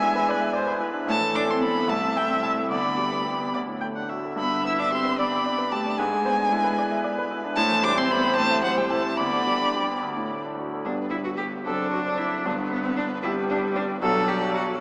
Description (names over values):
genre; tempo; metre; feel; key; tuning
quick classical-period movement for piano quartet; 71-78 BPM (dotted quarters); 6/8; rubato; G major; A4 = 442 Hz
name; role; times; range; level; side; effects
rich violin; melody; 0.0-14.8 s; B4 to E6; -27 LUFS; equal; none
clear cello; second line; 0.0-14.6 s; F#3 to A4; -30 LUFS; equal; none
clear concert grand piano; accompaniment; 0.0-14.8 s; F#1 to G5; -27 LUFS; equal; none
rich viola; accompaniment; 0.0-14.8 s; F#3 to G5; -27 LUFS; equal; none
room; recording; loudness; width
wet cathedral reverb, RT60 5.0 s; in a vast, echoing space, small speaker sound; -22 LUFS; side -37 dB against mid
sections
0.0-10.8 A section; 10.8-14.8 B section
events
none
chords
0.0 E7/G#; 1.1 Am; 1.9 Am/C; 2.7 G/D; 3.5 D; 4.4 G; 6.0 E7/G#; 7.6 Am7; 9.2 G/D; 10.0 D; 10.8 G; 11.7 D7/F#; 12.5 G; 14.0 G/B